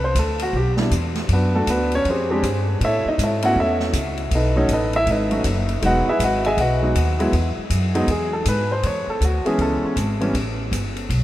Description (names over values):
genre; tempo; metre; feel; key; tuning
jazz piano trio; 159 BPM; 4/4; swing 64% on 8ths; E major; A4 = 440 Hz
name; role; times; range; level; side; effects
warm grand piano; melody; 0.0-10.3 s; E3 to G#5; -20 LUFS; equal; none
upright bass; bass; 0.0-11.2 s; E1 to A2; -22 LUFS; equal; none
open jazz drum kit; drums; 0.1-11.2 s; hi-hat, kick drum, ride cymbal, snare drum; -29 LUFS; left 1 dB; none
room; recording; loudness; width
moderate cathedral reverb, RT60 6.6 s; in a vast, echoing space; -18 LUFS; side -14 dB against mid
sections
0.0-8.8 A section; 8.8-11.2 A section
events
grand piano solo 0.0-11.2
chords
0.0 Cmaj9; 1.3 Bm7; 2.1 Fmadd9; 2.8 Amaj7; 4.3 B7; 5.8 Emaj9; 8.8 Amaj9; 10.3 A7sus2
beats
0.16 0.54 0.92 | 1.30 1.67 2.05 2.43 | 2.81 3.19 3.56 3.94 | 4.32 4.70 5.07 5.45 | 5.83 6.20 6.58 6.96 | 7.33 7.71 8.09 8.46 | 8.84 9.22 9.59 9.97 | 10.35 10.72 11.10